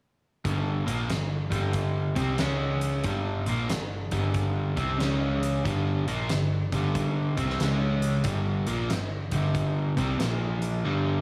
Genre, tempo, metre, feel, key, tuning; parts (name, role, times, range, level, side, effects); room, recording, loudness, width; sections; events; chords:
blues rock power trio and southern rock; 92 BPM; 4/4; swing 65% on 8ths; G minor; A4 = 440 Hz
overdriven semi-hollow guitar; riff; 0.4-11.2 s; G2 to C#4; -29 LUFS; equal
hollow-body short-scale picked electric bass; bass; 0.5-10.8 s; G1 to C#2; -33 LUFS; equal
big rock drum kit; drums; 0.5-10.7 s; hi-hat, kick drum, snare drum; -35 LUFS; equal
light reverb; small room ambience; -27 LUFS; mono
0.5-10.8 A section
0.5 Gm; 2.4 C#5; 3.1 Gm; 5.0 C#5; 5.7 Gm; 7.6 C#5; 8.3 Gm; 10.2 Bb5